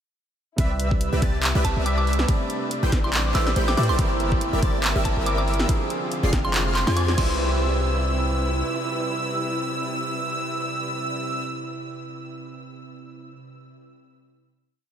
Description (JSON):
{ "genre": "future bass", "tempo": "141 BPM", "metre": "4/4", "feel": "swing 55% on 16ths, half-time", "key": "C major", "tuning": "A4 = 441 Hz", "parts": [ { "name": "barky tine electric piano", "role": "accompaniment", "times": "0.6-13.3 s", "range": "C3 to B5", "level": "-30 LUFS", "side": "right 2 dB", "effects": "wide subtle chorus, sidechain pumping, tape echo" }, { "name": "muted studio string section", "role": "sustained chords", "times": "0.6-11.4 s", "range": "C3 to B4", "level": "-34 LUFS", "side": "left 1 dB", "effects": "sidechain pumping" }, { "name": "airy dreamy lead", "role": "arpeggios", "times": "0.6-11.4 s", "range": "D6 to C7", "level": "-32 LUFS", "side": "equal", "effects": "chorus, sidechain pumping" }, { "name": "supersaw stab", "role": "riff", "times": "0.6-11.4 s", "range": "F3 to C6", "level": "-31 LUFS", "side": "equal", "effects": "ensemble chorus, sidechain pumping, tape echo" }, { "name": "warm 808-style bass", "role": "bass", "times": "0.6-8.6 s", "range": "F1 to A2", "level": "-24 LUFS", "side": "equal", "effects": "sidechain pumping" }, { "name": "big-room dance drum kit", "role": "drums", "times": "0.6-7.3 s", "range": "crash cymbal, handclaps, hi-hat, ride cymbal, snare drum", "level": "-28 LUFS", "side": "equal", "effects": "none" }, { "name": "electronic kick drum", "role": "drums", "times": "0.6-7.3 s", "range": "none", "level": "-23 LUFS", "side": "equal", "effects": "overdrive" }, { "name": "mallet-like synth pluck", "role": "melody", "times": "1.6-7.4 s", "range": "A5 to E6", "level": "-31 LUFS", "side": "equal", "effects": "chorus, sidechain pumping, analog delay" } ], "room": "moderate huge ambient reverb, RT60 7.2 s", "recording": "dreamy mix soaked in reverb", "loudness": "-21 LUFS", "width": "side -9 dB against mid", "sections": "0.6-7.4 drop; 7.4-10.8 final note", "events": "drop 0.6-7.4", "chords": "0.6 Cmaj7; 2.3 Am11; 4.0 C7/G; 5.7 Fm6; 7.2 Cmaj7", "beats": "| 0.58 1.01 1.43 1.86 | 2.29 2.71 3.14 3.56 | 3.99 4.41 4.84 5.26 | 5.69 6.12 6.54 6.97 | 7.39 7.82 8.24 8.67 | 9.09 9.52 9.95 10.37" }